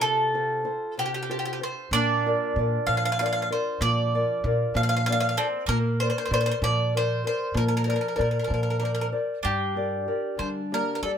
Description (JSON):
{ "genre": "italian folk, Italian serenade", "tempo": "64 BPM (dotted quarters)", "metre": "6/8", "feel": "straight", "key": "Bb major", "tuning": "A4 = 436 Hz", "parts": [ { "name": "bowl-back mandolin", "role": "melody", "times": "0.0-11.1 s", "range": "G4 to F5", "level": "-27 LUFS", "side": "right 1 dB", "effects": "plate reverb" }, { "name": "bowl-back mandolin", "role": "second line", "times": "0.0-11.2 s", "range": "Bb3 to F4", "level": "-33 LUFS", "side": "right 5 dB", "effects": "none" }, { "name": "nylon-string guitar", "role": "accompaniment", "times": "0.0-11.2 s", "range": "C3 to D5", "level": "-29 LUFS", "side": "left 3 dB", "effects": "none" }, { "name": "upright bass", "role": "bass", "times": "1.9-11.2 s", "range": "G2 to G3", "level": "-27 LUFS", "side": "right 1 dB", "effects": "none" } ], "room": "moderate small room reverb, RT60 0.5 s", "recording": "none", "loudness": "-23 LUFS", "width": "side -8 dB against mid", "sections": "0.0-9.4 A section; 9.4-11.2 B section", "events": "none", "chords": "0.0 F; 1.9 Bb; 5.7 Bbadd9; 9.4 Gm" }